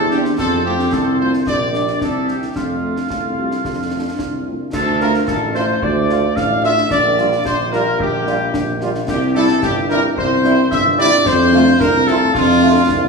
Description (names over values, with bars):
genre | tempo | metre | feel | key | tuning
military-style march for wind band | 110 BPM | 2/4 | straight | F major | A4 = 440 Hz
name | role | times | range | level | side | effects
bright trumpet section | melody | 0.0-13.1 s | F4 to F5 | -20 LUFS | equal | none
clear woodwind section | second line | 0.0-13.1 s | F4 to F5 | -21 LUFS | left 1 dB | none
dark euphonium | second line | 0.0-4.7 s | G3 to D4 | -24 LUFS | right 1 dB | none
warm tuba | bass | 0.0-13.1 s | G1 to F2 | -18 LUFS | right 1 dB | none
dark French horn section | accompaniment | 0.1-12.7 s | G3 to G4 | -26 LUFS | left 5 dB | none
concert snare drum, clash cymbals and concert bass drum | drums | 0.1-13.1 s | none | -25 LUFS | left 1 dB | none
clear trombone section | sustained chords | 5.0-12.7 s | G3 to F4 | -23 LUFS | right 2 dB | none
room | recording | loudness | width
wet recital hall reverb, RT60 1.7 s | recorded in a church or concert hall | -14 LUFS | side -4 dB against mid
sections
0.0-4.7 A section; 4.7-13.1 B section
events
none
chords
0.4 F; 1.5 Gm/Bb; 2.0 C; 2.6 F; 4.7 Dm; 6.9 Gm7/Bb; 9.1 C; 11.3 F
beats
| 0.38 0.93 | 1.47 2.02 | 2.56 3.10 | 3.65 4.19 | 4.74 5.28 | 5.82 6.37 | 6.91 7.45 | 8.00 8.54 | 9.08 9.63 | 10.17 10.71 | 11.26 11.80 | 12.35 12.89